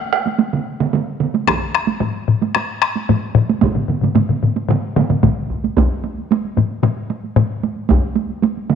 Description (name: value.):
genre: japanese traditional, taiko drum ensemble.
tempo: 112 BPM.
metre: 4/4.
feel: straight.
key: none.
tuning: none.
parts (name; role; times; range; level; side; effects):
solo taiko drums; percussion; 0.1-5.4, 8.7-8.8 s; none; -20 LUFS; right 6 dB; none.
taiko ensemble; percussion; 0.3-8.8 s; none; -20 LUFS; right 8 dB; none.
taiko ensemble; percussion; 1.5-7.5 s; none; -18 LUFS; left 6 dB; none.
taiko ensemble; percussion; 1.5-8.0 s; none; -19 LUFS; equal; none.
room: wet echo chamber reverb, RT60 1.7 s.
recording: 1960s-style stereo with parts hard left and right.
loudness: -16 LUFS.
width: side -7 dB against mid.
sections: 0.0-5.8 A section; 5.8-8.8 B section.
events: none.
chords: none.